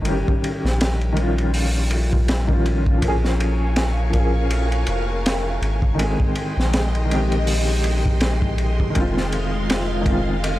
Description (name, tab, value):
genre	trip hop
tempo	81 BPM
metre	4/4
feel	swing 58% on 16ths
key	Bb dorian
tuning	A4 = 440 Hz
part	felt-muted upright piano	accompaniment	0.0-10.6 s	Eb3 to Ab4	-24 LUFS	left 1 dB	tremolo, low-pass filter, tape echo
part	soft dub sub bass	bass	0.0-10.6 s	F1 to Bb1	-21 LUFS	equal	none
part	crunchy breakbeat drum kit	drums	0.1-10.6 s	hi-hat, kick drum, ride cymbal, snare drum	-23 LUFS	equal	none
part	string machine, cellos	sustained chords	3.0-10.6 s	Ab3 to Db6	-28 LUFS	equal	phaser, ensemble chorus
room	small room ambience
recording	dry, gritty hardware recording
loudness	-18 LUFS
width	side -16 dB against mid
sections	0.0-10.6 A section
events	none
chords	0.1 Eb9/G; 3.0 Bbm7; 6.0 Abmaj7; 8.9 Fm7